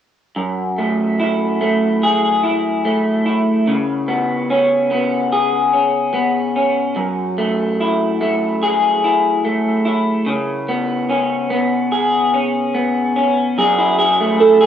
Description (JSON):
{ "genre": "indie pop", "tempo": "73 BPM", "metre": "4/4", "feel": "straight", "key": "F# minor", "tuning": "A4 = 440 Hz", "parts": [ { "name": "electric guitar through a small old amp", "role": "accompaniment", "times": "0.4-14.7 s", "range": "F#2 to G#4", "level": "-15 LUFS", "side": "left 1 dB", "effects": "lush chorus, warbly pitch drift, cassette tape" }, { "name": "warbly nostalgic lead", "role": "melody", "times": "14.4-14.7 s", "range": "A4", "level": "-8 LUFS", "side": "right 5 dB", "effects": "tremolo, wide subtle chorus, cassette tape" } ], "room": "moderate spring reverb, RT60 1.9 s, digital ambience", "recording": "home recording on cassette", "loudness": "-15 LUFS", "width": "side -9 dB against mid", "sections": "0.4-13.6 A section; 13.6-14.7 B section", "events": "none", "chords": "0.4 F#m9; 3.7 C#5; 7.0 F#m9; 10.3 C#5; 13.6 F#m9" }